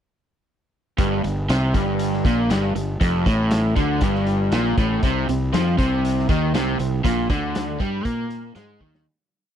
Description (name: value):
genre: classic rock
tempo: 119 BPM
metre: 4/4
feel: straight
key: G minor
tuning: A4 = 440 Hz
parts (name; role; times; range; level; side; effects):
- crunchy overdriven guitar; riff; 1.0-9.1 s; F2 to Bb3; -21 LUFS; equal; none
- fuzz fingered electric bass; bass; 1.0-9.0 s; F1 to Bb2; -25 LUFS; equal; overdrive
- raw garage drum kit; drums; 1.0-9.1 s; hi-hat, kick drum, snare drum; -25 LUFS; equal; none
room: little or no reverb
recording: dry, close 1970s-style studio recording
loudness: -18 LUFS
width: side -9 dB against mid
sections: 1.0-9.1 riff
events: fade-out 7.0-9.1; drum fill 8.8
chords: 1.0 Gm; 5.0 C5